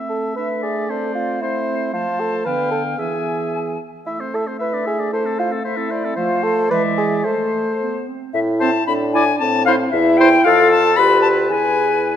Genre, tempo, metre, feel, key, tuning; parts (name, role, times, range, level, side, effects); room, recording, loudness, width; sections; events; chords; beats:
quick classical-period movement for wind quintet; 113 BPM; 2/4; straight; A minor; A4 = 443 Hz
warm oboe; second line; 0.0-12.2 s; A4 to F5; -24 LUFS; left 2 dB
mellow French horn; accompaniment; 0.0-12.2 s; D3 to A4; -22 LUFS; equal
mellow clarinet; accompaniment; 0.0-12.2 s; G#3 to F4; -27 LUFS; right 6 dB
mellow bassoon; bass; 0.1-12.2 s; D2 to B4; -22 LUFS; right 2 dB
silver concert flute; melody; 0.3-12.2 s; C5 to B5; -20 LUFS; left 6 dB
moderate scoring stage reverb, RT60 1.5 s; -16 LUFS; side -9 dB against mid
0.0-8.3 A section; 8.3-12.2 A section
0.4 E7/A; 0.9 Am; 1.9 F; 2.5 Bm7b5/D; 3.0 E; 4.1 Am; 4.6 E7/A; 5.1 Am; 6.2 F; 6.7 E7; 7.3 Am; 8.9 E7/A; 9.4 Am; 10.5 F; 11.0 Bdim/D; 11.5 E
0.36 | 0.89 1.41 | 1.93 2.46 | 2.99 3.52 | 4.06 4.59 | 5.12 5.65 | 6.18 6.71 | 7.25 7.80 | 8.34 8.88 | 9.41 9.93 | 10.46 10.98 | 11.51 12.05